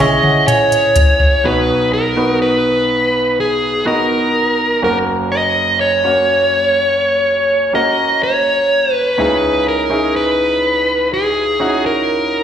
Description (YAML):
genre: pop ballad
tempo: 62 BPM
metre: 4/4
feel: straight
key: B major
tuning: A4 = 441 Hz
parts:
  - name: dark smooth lead guitar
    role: melody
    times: 0.0-12.4 s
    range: G#4 to E5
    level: -14 LUFS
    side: equal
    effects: overdrive, plate reverb, slapback echo, ping-pong delay
  - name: bright grand piano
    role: accompaniment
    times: 0.0-12.4 s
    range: F#1 to G#5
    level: -18 LUFS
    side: right 1 dB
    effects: plate reverb, slapback echo
  - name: vintage muted fingered electric bass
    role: bass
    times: 0.0-0.9 s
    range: B1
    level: -29 LUFS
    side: equal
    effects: none
  - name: deep house drum kit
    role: drums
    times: 0.2-1.4 s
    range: hi-hat, toms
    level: -15 LUFS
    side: equal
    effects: none
room: moderate club reverb, RT60 0.5 s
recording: live gig heard through the venue's PA, recital hall reverb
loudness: -12 LUFS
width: side -9 dB against mid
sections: 0.0-1.4 A section; 1.4-12.4 B section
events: grand piano fill 0.0-1.4; drum fill 0.0-1.4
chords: 0.0 C#m; 1.4 B; 4.8 F#; 9.2 C#madd9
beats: 0.47 | 1.44 2.41 3.37 4.34 | 5.31 6.28 7.25 8.21 | 9.18 10.15 11.12 12.08